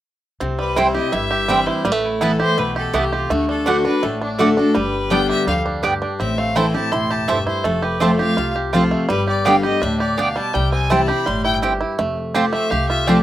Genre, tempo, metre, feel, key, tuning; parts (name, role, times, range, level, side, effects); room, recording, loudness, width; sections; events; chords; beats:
bluegrass; 166 BPM; 4/4; straight; C major; A4 = 438 Hz
bluegrass banjo; melody; 0.4-13.2 s; G3 to G4; -22 LUFS; right 4 dB; slapback echo
picked steel-string acoustic guitar; accompaniment; 0.4-13.2 s; F2 to G4; -20 LUFS; left 2 dB
upright bass; bass; 0.4-13.2 s; E1 to D2; -27 LUFS; equal
clear fiddle; melody; 0.6-13.2 s; D4 to C6; -24 LUFS; left 2 dB
mandolin; stabs; 0.8-13.2 s; A3 to A5; -19 LUFS; right 4 dB
little or no reverb; recorded outdoors, with no room sound; -16 LUFS; side -13 dB against mid
0.4-12.0 A section; 12.0-13.2 B section
0.4 C; 1.9 Asus2; 3.3 D; 4.8 G; 6.2 Am; 7.6 F; 9.1 G; 10.5 C; 12.0 F
| 0.41 0.77 1.13 1.50 | 1.86 2.22 2.58 2.94 | 3.31 3.67 4.03 4.39 | 4.75 5.12 5.48 5.84 | 6.20 6.56 6.92 7.29 | 7.65 8.01 8.37 8.73 | 9.10 9.46 9.82 10.18 | 10.54 10.90 11.27 11.63 | 11.99 12.35 12.71 13.08